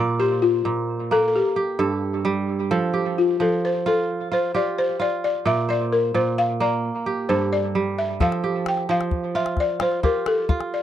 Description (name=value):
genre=west african traditional, West African string and xylophone music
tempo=87 BPM (dotted quarters)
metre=12/8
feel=straight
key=F major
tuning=A4 = 440 Hz
part: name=kora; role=arpeggios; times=0.0-10.8 s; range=G2 to D5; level=-23 LUFS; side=right 4 dB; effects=tape echo
part: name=balafon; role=melody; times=0.2-10.8 s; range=F4 to G5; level=-22 LUFS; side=left 3 dB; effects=none
part: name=calabash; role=percussion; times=8.2-10.7 s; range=none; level=-23 LUFS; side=left 2 dB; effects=none
room=light reverb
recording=dry, close 1970s-style studio recording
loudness=-20 LUFS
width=side -11 dB against mid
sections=0.0-10.8 A section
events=balafon solo 0.0-10.8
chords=0.0 Bb; 1.3 Gsus2; 2.7 F; 5.5 Bb; 6.8 G5; 8.2 F